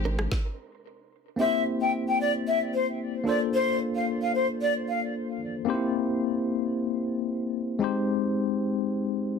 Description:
afrobeats; 112 BPM; 4/4; straight; A4 = 439 Hz
tine electric piano; accompaniment; 0.0-9.4 s; Ab3 to C5; -27 LUFS; left 3 dB; medium stereo tremolo, low-pass filter
breathy mellow jazz flute; melody; 1.4-5.0 s; C5 to G5; -26 LUFS; left 1 dB; tape echo, plate reverb
moderate studio ambience, RT60 0.5 s; dense, heavily limited modern master; -25 LUFS; side -5 dB against mid
0.0-1.4 A section; 1.4-9.4 B section
filter sweep on tine electric piano 0.0-1.4; stop 0.3-1.4
0.0 Abmaj7; 1.4 C7; 3.3 Bbmaj9; 5.7 C7; 7.8 Abmaj7
0.32 0.85 | 1.39 1.92 2.46 2.99 | 3.53 4.07 4.60 5.14 | 5.67 6.21 6.74 7.28 | 7.82 8.35 8.89

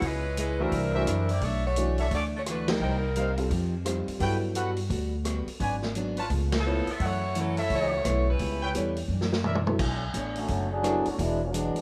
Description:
jazz, big band swing; 172 BPM; 4/4; swing 63% on 8ths; A4 = 441 Hz
edgy saxophone section; melody; 0.0-3.4, 6.6-9.0 s; E#3 to E5; -34 LUFS; equal
picked plugged-in steel-string acoustic guitar; accompaniment; 0.0-11.8 s; F#2 to C#5; -37 LUFS; equal
upright bass; bass; 0.0-11.8 s; E1 to G2; -32 LUFS; equal
vintage drum kit; drums; 0.0-11.8 s; crash cymbal, hi-hat, kick drum, ride cymbal, rim click, snare drum, toms; -36 LUFS; equal
dark baby grand piano; accompaniment; 0.6-11.0 s; E3 to C#5; -35 LUFS; equal
mellow trumpet section; stabs; 0.6-9.6 s; D4 to A5; -35 LUFS; equal
warm trombone section; second line; 10.4-11.8 s; D3 to G#4; -31 LUFS; equal
light reverb; -28 LUFS; mono
0.0-9.8 A section; 9.8-11.8 B section
band accent 2.6, 6.5; drum fill 9.1-9.8; trombone section solo 9.8-11.8
0.0 C#m7; 0.7 C9; 1.4 Bm11; 2.8 Cm7; 3.5 F9; 4.2 Gmaj9; 5.6 G#m7b5; 6.3 C#7alt; 7.0 F#m7; 8.4 C#m7b5; 9.1 F#7b13; 9.8 Bm9; 11.2 E9
| 0.02 0.37 0.72 1.06 | 1.42 1.76 2.11 2.46 | 2.81 3.16 3.51 3.86 | 4.21 4.56 4.91 5.26 | 5.61 5.96 6.31 6.66 | 7.01 7.36 7.71 8.05 | 8.40 8.75 9.10 9.45 | 9.80 10.14 10.49 10.84 | 11.19 11.54

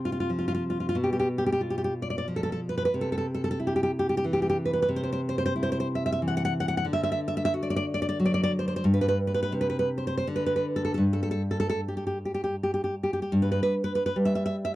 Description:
romantic piece for solo classical guitar; 70-95 BPM; 3/4; rubato; C major; A4 = 440 Hz
nylon-string guitar; solo; 0.0-14.8 s; G2 to F#5; -25 LUFS; equal
light reverb; dry, close 1970s-style studio recording; -25 LUFS; side -16 dB against mid
0.0-13.3 A section; 13.3-14.8 B section
0.0 Csus4; 1.0 B(b5, no3); 2.9 C; 6.8 D; 8.8 N.C.
0.31 | 0.95 1.60 2.25 | 2.92 3.57 4.22 | 4.87 5.52 6.19 | 6.84 7.51 8.18 | 8.84 9.52 10.26 | 11.03 11.81 12.56 | 13.33 14.16

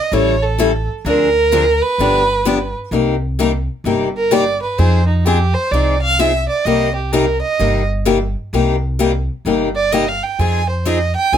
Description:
acoustic string swing (jazz manouche); 128 BPM; 4/4; swing 64% on 8ths; C minor; A4 = 438 Hz
rich violin; melody; 0.0-11.4 s; Eb4 to Ab5; -17 LUFS; right 3 dB
picked steel-string acoustic guitar; accompaniment; 0.1-11.4 s; C3 to A4; -17 LUFS; left 5 dB
upright bass; bass; 0.1-11.4 s; G1 to F2; -19 LUFS; equal
light reverb; -14 LUFS; side -9 dB against mid
0.0-2.9 A section; 2.9-11.4 B section
violin solo 2.9-11.4
0.1 A7; 1.1 Dm7b5; 2.0 G7; 2.9 Cm7; 4.8 Fm7; 6.7 Cm7; 10.4 Fm7
0.12 0.59 | 1.05 1.52 1.99 2.45 | 2.92 3.39 3.85 4.32 | 4.79 5.25 5.72 6.19 | 6.65 7.12 7.59 8.05 | 8.52 8.99 9.46 9.92 | 10.39 10.86 11.32

